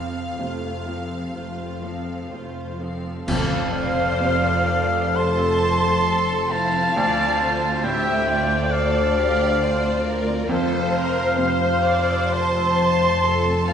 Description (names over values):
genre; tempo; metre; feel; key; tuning
cinematic, emotional film score for orchestra; 61-69 BPM; 4/4; rubato; F major; A4 = 440 Hz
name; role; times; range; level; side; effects
rich studio violin section; melody; 0.0-13.7 s; E4 to F5; -31 LUFS; left 2 dB; none
rich symphonic violin section; second line; 0.0-13.7 s; A4 to A5; -29 LUFS; left 2 dB; none
bright baby grand piano; accompaniment; 0.0-13.7 s; D2 to C3; -31 LUFS; right 2 dB; none
rich symphonic viola section; accompaniment; 0.0-13.7 s; F3 to E5; -29 LUFS; equal; none
concert harp; arpeggios; 0.0-13.7 s; D3 to E6; -31 LUFS; left 2 dB; none
rich symphonic cello section; bass; 0.0-13.7 s; D2 to F2; -28 LUFS; right 1 dB; none
rich symphonic double bass section; bass; 0.0-13.7 s; F1 to D2; -30 LUFS; right 2 dB; none
silver concert flute; second line; 3.3-13.7 s; F5 to C6; -29 LUFS; equal; none
warm oboe; second line; 3.3-13.7 s; F5 to C6; -24 LUFS; right 2 dB; none
mellow French horn section; sustained chords; 3.3-13.7 s; D3 to C5; -27 LUFS; left 5 dB; none
clash cymbals and concert bass drum; percussion; 3.3-5.1 s; none; -28 LUFS; equal; none
room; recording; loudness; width
wet scoring stage reverb, RT60 1.5 s; heard from further back in the room, nothing above 11.0 kHz; -18 LUFS; side -8 dB against mid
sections
0.0-3.3 A section; 3.3-13.7 B section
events
band accent 3.3-4.2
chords
0.0 F; 3.3 Fmaj7; 7.0 Dm7; 10.5 Fmaj7